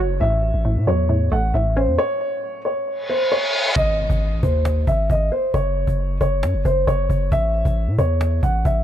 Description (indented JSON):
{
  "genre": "hip hop, trap",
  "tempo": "135 BPM",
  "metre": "4/4",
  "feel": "half-time",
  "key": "unclear",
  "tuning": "A4 = 439 Hz",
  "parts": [
    { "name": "dark concert grand piano", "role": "melody", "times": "0.0-8.8 s", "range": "B#4 to F#5", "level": "-22 LUFS", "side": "equal", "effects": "digital delay" },
    { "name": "hollow square pluck", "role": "accompaniment", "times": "0.0-2.0 s", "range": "A2 to F#4", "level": "-24 LUFS", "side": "right 1 dB", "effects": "chorus" },
    { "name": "long sustained 808-style bass", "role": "bass", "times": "0.0-8.8 s", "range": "F#1 to A2", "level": "-20 LUFS", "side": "equal", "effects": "none" },
    { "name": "downlifter, reverse cymbal and impact", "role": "sound effects", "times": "3.0-5.5 s", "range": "none", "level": "-25 LUFS", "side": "left 1 dB", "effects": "none" },
    { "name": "cajon", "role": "drums", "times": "3.8-8.8 s", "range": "none", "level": "-25 LUFS", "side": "equal", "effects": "none" }
  ],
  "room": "small room ambience",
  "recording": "none",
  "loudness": "-17 LUFS",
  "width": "side -10 dB against mid",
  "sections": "0.0-3.8 A section; 3.8-8.8 B section",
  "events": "stop 2.0-3.8; reverse cymbal 3.0-3.8; hi-hats muted 3.8-8.8; impact 3.8-5.5",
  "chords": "0.2 A6; 2.0 N.C.; 3.8 G#; 5.5 F#5; 7.3 A",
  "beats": "| 0.21 0.65 1.10 1.54 | 1.99 2.43 2.87 3.32 | 3.76 4.21 4.65 5.10 | 5.54 5.99 6.43 6.87 | 7.32 7.76 8.21 8.65"
}